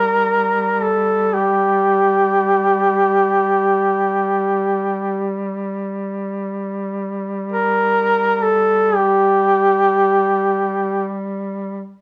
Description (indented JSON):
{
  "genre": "caucasian folk, Caucasian lament",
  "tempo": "free time",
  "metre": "none",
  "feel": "none",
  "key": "G minor",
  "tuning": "A4 = 440 Hz",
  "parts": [
    { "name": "warm duduk", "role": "melody", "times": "0.0-11.2 s", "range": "G4 to Bb4", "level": "-17 LUFS", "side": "equal", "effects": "none" },
    { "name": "warm duduk", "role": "drone", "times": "0.0-11.9 s", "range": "G3", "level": "-26 LUFS", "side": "equal", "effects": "none" }
  ],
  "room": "moderate studio reverb, RT60 0.8 s",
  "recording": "none",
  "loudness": "-18 LUFS",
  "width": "mono",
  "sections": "0.0-12.0 A section",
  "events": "none",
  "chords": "none",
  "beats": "free time"
}